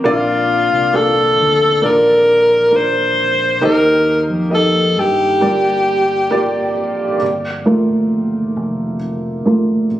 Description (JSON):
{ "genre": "pop ballad", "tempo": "67 BPM", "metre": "4/4", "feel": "straight", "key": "G minor", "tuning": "A4 = 440 Hz", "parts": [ { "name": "dark upright piano", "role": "accompaniment", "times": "0.0-10.0 s", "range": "G2 to F5", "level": "-17 LUFS", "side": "right 1 dB", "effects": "none" }, { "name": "deep dub fingered electric bass", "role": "bass", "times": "0.0-10.0 s", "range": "F1 to G2", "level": "-26 LUFS", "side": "left 1 dB", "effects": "none" }, { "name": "clear alto saxophone", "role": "melody", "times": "0.1-6.8 s", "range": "F4 to C5", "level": "-13 LUFS", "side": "left 1 dB", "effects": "tape echo" } ], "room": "light reverb, small room ambience", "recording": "recorded on a phone in the room, studio ambience, compression, nothing above 10.6 kHz", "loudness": "-12 LUFS", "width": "side -13 dB against mid", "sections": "0.0-7.2 A section; 7.2-10.0 B section", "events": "upright piano solo 7.2-10.0", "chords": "0.0 Bb; 3.6 Eb; 5.4 Gm7" }